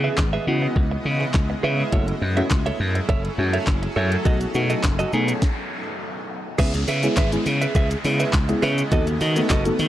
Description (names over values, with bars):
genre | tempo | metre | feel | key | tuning
dance-pop | 103 BPM | 4/4 | straight | C# minor | A4 = 443 Hz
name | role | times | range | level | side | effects
deep mellow chord stab | accompaniment | 0.0-9.9 s | G#3 to A4 | -26 LUFS | left 1 dB | chorus, sidechain pumping
granular cloud pad | sustained chords | 0.0-9.9 s | C#3 to D#5 | -30 LUFS | equal | built-in reverb, sidechain pumping
direct-recorded clean electric guitar | riff | 0.0-9.8 s | F#4 to E5 | -26 LUFS | right 4 dB | wide subtle chorus
slap bass | bass | 0.0-9.9 s | F#1 to D#3 | -23 LUFS | equal | sidechain pumping
smooth R&B drum kit | drums | 0.2-9.9 s | crash cymbal, handclaps, hi-hat, kick drum, shaker, snare drum | -22 LUFS | equal | none
noise sweep and downlifter | sound effects | 4.9-9.9 s | none | -34 LUFS | equal | none
room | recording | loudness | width
light reverb | dry, gritty hardware recording, transformer saturation | -19 LUFS | side -13 dB against mid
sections
0.0-6.6 A section; 6.6-9.9 B section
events
noise sweep 4.9-6.6; stop 5.4-6.6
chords
0.0 C#m7; 1.9 F#m7; 4.3 B7; 6.6 C#m7; 8.9 B7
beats
0.18 0.76 1.34 | 1.93 2.51 3.09 3.67 | 4.26 4.84 5.42 6.00 | 6.59 7.17 7.75 8.34 | 8.92 9.50